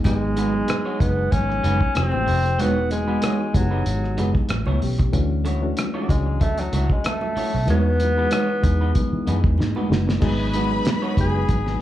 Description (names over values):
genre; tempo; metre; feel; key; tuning
lush 1970s-style soul; 94 BPM; 4/4; swing 54% on 16ths; E major; A4 = 438 Hz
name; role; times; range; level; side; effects
breathy alto saxophone; melody; 0.0-11.8 s; F#3 to G#4; -25 LUFS; equal; slapback echo
reed electric piano; accompaniment; 0.0-11.8 s; E3 to G#4; -26 LUFS; left 3 dB; fast tremolo, slapback echo
vintage muted fingered electric bass; bass; 0.0-11.8 s; E1 to E3; -22 LUFS; equal; none
congas; percussion; 0.0-11.6 s; none; -32 LUFS; right 7 dB; slapback echo
cloth-damped thuddy drum kit; drums; 0.1-11.7 s; crash cymbal, hi-hat, kick drum, rim click, snare drum; -24 LUFS; equal; none
electric guitar through a small old amp; riff; 0.4-11.7 s; G#3 to D5; -30 LUFS; right 3 dB; slapback echo
warm symphonic string section; second line; 10.2-11.8 s; B4 to B5; -28 LUFS; left 2 dB; slapback echo
room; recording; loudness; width
studio reverb; live gig heard through the venue's PA, club ambience; -18 LUFS; side -13 dB against mid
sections
0.0-10.2 A section; 10.2-11.8 B section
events
drum fill 9.6-10.2; alto saxophone solo 10.2-11.8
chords
0.0 G#m7; 2.0 Fmaj9; 2.6 Emaj9; 4.5 A9; 5.1 Dmaj9; 7.7 Emaj9; 10.2 G#m7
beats
| 0.05 0.68 1.32 1.96 | 2.59 3.23 3.86 4.50 | 5.13 5.77 6.41 7.04 | 7.68 8.31 8.95 9.58 | 10.22 10.86 11.49